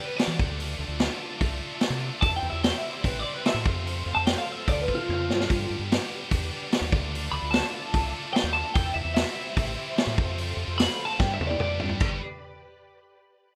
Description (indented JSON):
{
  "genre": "indie rock",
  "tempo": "147 BPM",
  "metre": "4/4",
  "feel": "straight",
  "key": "G mixolydian",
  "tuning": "A4 = 440 Hz",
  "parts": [
    { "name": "twelve-string electric guitar", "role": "melody", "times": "0.0-11.8 s", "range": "F4 to B5", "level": "-32 LUFS", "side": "equal", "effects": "analog chorus, tape echo" },
    { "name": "soft string machine", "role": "sustained chords", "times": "0.0-12.2 s", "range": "F4 to C6", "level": "-43 LUFS", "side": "equal", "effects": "ensemble chorus" },
    { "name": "high-gain distorted guitar", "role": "riff", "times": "0.0-12.2 s", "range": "F2 to G4", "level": "-36 LUFS", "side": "equal", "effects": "distortion" },
    { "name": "vintage drum kit", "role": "drums", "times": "0.2-12.1 s", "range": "crash cymbal, hi-hat, kick drum, snare drum, toms", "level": "-30 LUFS", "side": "equal", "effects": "none" },
    { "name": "growling fingered electric bass", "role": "bass", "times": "0.3-12.2 s", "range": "G1 to E3", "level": "-34 LUFS", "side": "equal", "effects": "overdrive" }
  ],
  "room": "light reverb",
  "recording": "rough home demo mix",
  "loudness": "-27 LUFS",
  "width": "mono",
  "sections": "0.0-12.0 A section; 12.0-13.6 B section",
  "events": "clean electric guitar solo 0.0-12.0; drum fill 5.1-5.5, 11.2-12.0",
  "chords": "0.4 Dmadd9; 2.2 C/E; 3.6 F; 5.5 G; 6.9 Dmadd9; 8.7 C/E; 10.2 F; 11.2 G",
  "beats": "0.19 | 0.59 1.00 1.41 1.82 | 2.22 2.63 3.04 3.45 | 3.85 4.26 4.67 5.08 | 5.48 5.89 6.30 6.71 | 7.11 7.52 7.93 8.34 | 8.74 9.15 9.56 9.97 | 10.37 10.78 11.19 11.60 | 12.00"
}